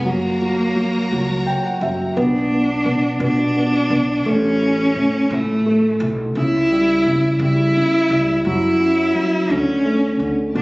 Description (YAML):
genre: acoustic folk-pop ballad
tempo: 57 BPM (dotted quarters)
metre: 6/8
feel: straight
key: B minor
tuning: A4 = 440 Hz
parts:
  - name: rich cello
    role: melody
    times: 0.0-10.6 s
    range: A3 to E4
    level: -18 LUFS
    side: equal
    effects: none
  - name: felt-muted upright piano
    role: accompaniment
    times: 0.0-10.6 s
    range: B2 to G5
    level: -20 LUFS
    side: equal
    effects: none
  - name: warm studio string section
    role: sustained chords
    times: 0.0-2.2, 10.5-10.6 s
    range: F#4 to A#5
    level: -30 LUFS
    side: equal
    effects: none
  - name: upright bass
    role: bass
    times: 0.0-10.6 s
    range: F#1 to F#3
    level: -25 LUFS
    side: equal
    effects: none
room: light reverb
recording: recorded on a phone in the room, studio reverb, nothing above 7.8 kHz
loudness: -15 LUFS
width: side -24 dB against mid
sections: 0.0-2.2 A section; 2.2-10.6 B section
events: none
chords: 0.1 F#; 2.2 Bm; 4.3 A; 6.4 C#dim; 8.4 F#5; 9.5 D5